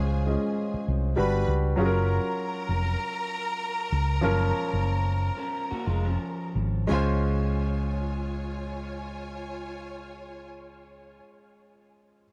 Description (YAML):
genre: soul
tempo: 85-100 BPM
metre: 4/4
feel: swing 54% on 16ths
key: Db major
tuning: A4 = 440 Hz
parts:
  - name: rich studio string section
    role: second line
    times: 0.0-10.5 s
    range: F4 to B5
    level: -37 LUFS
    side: equal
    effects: tape echo
  - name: warm grand piano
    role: accompaniment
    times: 0.0-12.2 s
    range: F3 to Eb5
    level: -32 LUFS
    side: equal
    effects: none
  - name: warm French horn section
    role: sustained chords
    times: 0.0-1.8 s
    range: G3 to C5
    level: -42 LUFS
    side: equal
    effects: none
  - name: hollow-body short-scale fingered electric bass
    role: bass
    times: 0.0-11.2 s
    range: F1 to Db2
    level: -29 LUFS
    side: equal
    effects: none
  - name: electric guitar through a small old amp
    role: riff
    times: 5.4-6.9 s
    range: F3 to Bb4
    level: -37 LUFS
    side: equal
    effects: lush chorus
room: light reverb, studio reverb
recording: dark, warm production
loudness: -27 LUFS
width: mono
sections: 0.0-6.9 A section; 6.9-9.7 B section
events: slowing down 1.8-6.9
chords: 0.0 Dbmaj7; 1.2 Gmaj7; 1.8 Gbmaj7; 6.9 Dbmaj7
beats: 0.57 1.17 | 1.77 2.38 2.99 3.60 | 4.23 4.87 5.53 6.20 | 6.90 7.61 8.31 9.02